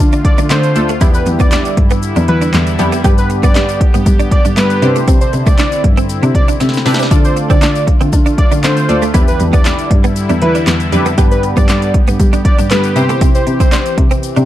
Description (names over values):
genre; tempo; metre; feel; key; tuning
dance-pop; 118 BPM; 4/4; straight; unclear; A4 = 440 Hz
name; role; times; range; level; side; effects
sweeping resonant pad; sustained chords; 0.0-14.5 s; D3 to G4; -22 LUFS; left 1 dB; chorus, sidechain pumping
muted cello; bass; 0.0-14.5 s; D2 to D4; -15 LUFS; equal; sidechain pumping
direct-recorded clean electric guitar; riff; 0.1-14.4 s; A3 to G4; -21 LUFS; right 5 dB; ensemble chorus
deep house drum kit; drums; 0.1-14.5 s; handclaps, hi-hat, kick drum, snare drum; -12 LUFS; equal; none
tube shaker; percussion; 0.1-14.5 s; none; -31 LUFS; left 16 dB; none
fat analog lead; melody; 0.2-14.0 s; B4 to D5; -20 LUFS; equal; ping-pong delay
funky polysynth comp; accompaniment; 0.8-13.8 s; A3 to D5; -19 LUFS; left 1 dB; chorus, sidechain pumping
room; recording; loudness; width
digital ambience; dark, warm production; -9 LUFS; side -13 dB against mid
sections
0.0-14.5 A section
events
drum fill 6.6-7.1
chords
0.0 Dm; 1.0 Em7; 3.0 G; 4.8 Cadd9; 7.1 Dm; 9.1 Em7; 11.2 G; 13.0 C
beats
0.50 | 1.01 1.52 2.03 2.54 | 3.04 3.55 4.06 4.57 | 5.08 5.59 6.09 6.60 | 7.11 7.62 8.13 8.64 | 9.14 9.65 10.16 10.67 | 11.18 11.69 12.20 12.70 | 13.21 13.72 14.23